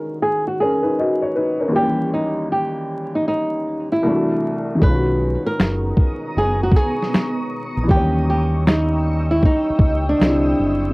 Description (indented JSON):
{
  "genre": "lo-fi hip hop",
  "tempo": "78 BPM",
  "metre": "4/4",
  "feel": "swing 65% on 16ths",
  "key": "B major",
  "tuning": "A4 = 443 Hz",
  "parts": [
    { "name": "flamenco guitar", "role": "melody", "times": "0.0-10.9 s", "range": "D4 to B4", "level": "-21 LUFS", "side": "equal", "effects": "low-pass filter, cassette tape" },
    { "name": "felt-muted upright piano", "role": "accompaniment", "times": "0.0-10.9 s", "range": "C2 to D#5", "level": "-22 LUFS", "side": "left 1 dB", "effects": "cassette tape, low-pass filter" },
    { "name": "granular cloud pad", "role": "sustained chords", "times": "5.4-10.9 s", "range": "B3 to E6", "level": "-28 LUFS", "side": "equal", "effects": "built-in reverb, low-pass filter, cassette tape" },
    { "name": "deep dub fingered electric bass", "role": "bass", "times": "4.8-10.9 s", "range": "F#1 to D#2", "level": "-20 LUFS", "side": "equal", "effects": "tube saturation" },
    { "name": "dusty soul sampler-style drum kit", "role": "drums", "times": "4.8-10.4 s", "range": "finger snaps, kick drum, snare drum", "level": "-16 LUFS", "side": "equal", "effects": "overdrive, cassette tape" }
  ],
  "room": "light reverb",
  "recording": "home recording on cassette, vinyl crackle",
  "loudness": "-16 LUFS",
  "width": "side -25 dB against mid",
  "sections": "0.0-4.8 A section; 4.8-10.9 B section",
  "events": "hi-hats muted 4.8-10.9",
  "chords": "0.0 Bmaj13/D#; 1.7 D#7b9; 4.0 Cadd9; 4.8 Bmaj9; 7.9 D#7b9; 10.2 Cadd9",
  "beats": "0.20 0.97 | 1.74 2.51 3.27 4.04 | 4.81 5.58 6.35 7.12 | 7.89 8.66 9.43 10.20"
}